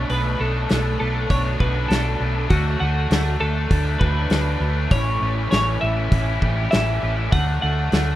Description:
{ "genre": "indie rock", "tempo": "100 BPM", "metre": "4/4", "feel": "straight", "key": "D major", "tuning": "A4 = 440 Hz", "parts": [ { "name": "twelve-string electric guitar", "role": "melody", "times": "0.0-8.2 s", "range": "F#4 to F#5", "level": "-26 LUFS", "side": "equal", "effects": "harmonic tremolo, tape echo" }, { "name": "raw garage guitar", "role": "riff", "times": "0.0-8.2 s", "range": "A2 to E4", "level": "-28 LUFS", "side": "left 7 dB", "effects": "overdrive" }, { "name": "thick fuzz guitar", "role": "riff", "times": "0.0-8.2 s", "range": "E3 to G4", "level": "-29 LUFS", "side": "right 9 dB", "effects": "distortion, analog chorus, tape echo" }, { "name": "hollow-body short-scale fingered electric bass", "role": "bass", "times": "0.0-8.2 s", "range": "A1 to D2", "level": "-22 LUFS", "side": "equal", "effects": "none" }, { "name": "loose indie drum kit", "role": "drums", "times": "0.1-8.1 s", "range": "hi-hat, kick drum, snare drum", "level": "-21 LUFS", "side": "equal", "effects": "none" } ], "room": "light reverb", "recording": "rough home demo mix", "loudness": "-18 LUFS", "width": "side -14 dB against mid", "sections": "0.0-8.2 A section", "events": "none", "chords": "0.0 Bm7; 2.5 D; 4.9 A7; 7.3 D" }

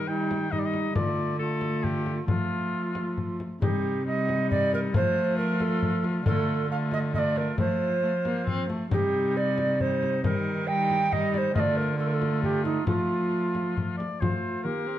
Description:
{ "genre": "classical, renaissance-style consort dance", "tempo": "136 BPM", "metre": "3/4", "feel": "straight", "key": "unclear", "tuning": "A4 = 445 Hz", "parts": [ { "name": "warm oboe", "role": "melody", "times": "0.0-15.0 s", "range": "Eb4 to G5", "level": "-35 LUFS", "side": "left 6 dB", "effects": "none" }, { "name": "mellow tenor recorder", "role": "second line", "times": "0.0-15.0 s", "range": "Eb4 to G5", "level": "-28 LUFS", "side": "right 3 dB", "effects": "none" }, { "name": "warm viola", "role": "accompaniment", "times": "0.0-15.0 s", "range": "G3 to C4", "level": "-31 LUFS", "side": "left 2 dB", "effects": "none" }, { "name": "dark cello", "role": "bass", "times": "0.0-15.0 s", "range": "C3 to F3", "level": "-30 LUFS", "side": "right 1 dB", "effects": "none" }, { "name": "frame drum", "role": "percussion", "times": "0.3-14.4 s", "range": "none", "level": "-30 LUFS", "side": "left 3 dB", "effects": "none" } ], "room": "moderate stone room reverb, RT60 1.3 s", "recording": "dark, warm production", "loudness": "-24 LUFS", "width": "side -12 dB against mid", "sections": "0.0-3.6 A section; 3.6-14.2 A section", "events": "none", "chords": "0.0 Eb; 1.0 Dm; 2.3 F; 3.6 Cm; 4.9 F; 6.3 Dm; 7.6 F; 8.9 Cm; 10.2 Eb; 11.6 Dm; 12.9 F" }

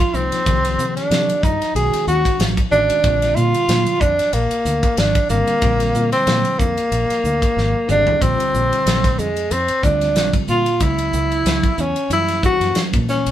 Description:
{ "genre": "electric jazz fusion", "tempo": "93 BPM", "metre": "4/4", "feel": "swing 55% on 16ths", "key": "Bb mixolydian", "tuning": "A4 = 440 Hz", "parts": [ { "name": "breathy tenor saxophone", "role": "melody", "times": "0.0-13.3 s", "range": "Ab3 to Ab4", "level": "-18 LUFS", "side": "equal", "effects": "none" }, { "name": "bell-like tine electric piano", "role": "accompaniment", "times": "0.1-13.3 s", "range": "Db3 to Ab4", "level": "-27 LUFS", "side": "equal", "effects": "fast stereo tremolo, phaser" }, { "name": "fingered electric bass", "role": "bass", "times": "0.1-13.3 s", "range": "Ab1 to C3", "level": "-22 LUFS", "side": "equal", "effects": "none" }, { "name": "modern studio drum kit", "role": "drums", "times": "0.1-13.3 s", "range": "hi-hat, kick drum, ride cymbal, snare drum, toms", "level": "-21 LUFS", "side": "equal", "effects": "none" } ], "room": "moderate studio reverb, RT60 0.5 s", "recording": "band playing live in one room", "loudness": "-15 LUFS", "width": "side -11 dB against mid", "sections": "0.0-8.2 A section; 8.2-13.3 B section", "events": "drum fill 7.6-8.2", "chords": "0.5 Cm7; 1.7 B9; 3.0 Bb13; 8.2 Bbadd9; 10.8 Dbm7; 12.1 Gb7b9" }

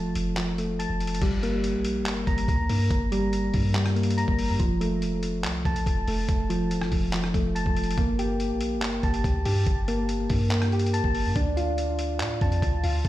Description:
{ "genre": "hip hop, trap", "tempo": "142 BPM", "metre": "4/4", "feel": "half-time", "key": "G minor", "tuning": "A4 = 440 Hz", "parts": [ { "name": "soft electric-piano-like synth keys", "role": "arpeggios", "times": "0.0-13.1 s", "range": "F3 to Bb5", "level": "-27 LUFS", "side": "equal", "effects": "chorus, low-pass filter, ping-pong delay" }, { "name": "warm 808-style bass", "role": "bass", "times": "0.0-13.1 s", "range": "E1 to A2", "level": "-28 LUFS", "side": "equal", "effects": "none" }, { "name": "lo-fi sampler-style drum kit", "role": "drums", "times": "0.2-13.1 s", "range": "crash cymbal, handclaps, hi-hat, kick drum, rim click", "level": "-29 LUFS", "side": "equal", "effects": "none" } ], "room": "digital ambience", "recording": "played on a big sound system in a bare room, stone room reverb", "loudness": "-23 LUFS", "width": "side -14 dB against mid", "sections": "0.0-1.2 A section; 1.2-13.1 B section", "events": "filter sweep on synth keys 0.0-1.2", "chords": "0.0 F; 1.2 Gm; 4.6 F; 8.0 Gmadd9; 11.4 Dm" }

